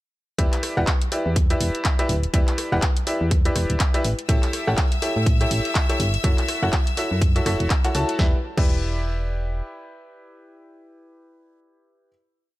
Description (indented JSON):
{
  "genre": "piano house",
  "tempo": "123 BPM",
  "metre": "4/4",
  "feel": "swing 58% on 16ths",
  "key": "E dorian",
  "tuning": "A4 = 441 Hz",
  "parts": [
    { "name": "bright upright piano", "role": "riff", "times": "0.4-12.1 s", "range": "E4 to A5", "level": "-26 LUFS", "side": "equal", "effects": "sidechain pumping, digital delay" },
    { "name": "solid FM bass", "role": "bass", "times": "0.4-9.6 s", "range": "D1 to A2", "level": "-24 LUFS", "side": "equal", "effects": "sidechain pumping" },
    { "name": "electronic kick drum", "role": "drums", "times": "0.4-8.7 s", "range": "none", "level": "-20 LUFS", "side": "equal", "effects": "overdrive" },
    { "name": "house drum kit", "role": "drums", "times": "0.4-8.7 s", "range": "crash cymbal, handclaps, hi-hat, rim click, snare drum", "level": "-28 LUFS", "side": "equal", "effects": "none" },
    { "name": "bright studio violin section", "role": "sustained chords", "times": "4.3-8.2 s", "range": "E5 to E6", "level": "-30 LUFS", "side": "left 3 dB", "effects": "sidechain pumping" }
  ],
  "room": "little or no reverb",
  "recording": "none",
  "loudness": "-19 LUFS",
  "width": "side -17 dB against mid",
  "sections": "0.4-8.2 drop; 8.2-12.1 final chord",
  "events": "drop 0.4-8.2",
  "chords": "0.4 Em7; 4.0 A7; 6.2 F#m7; 8.2 Em7"
}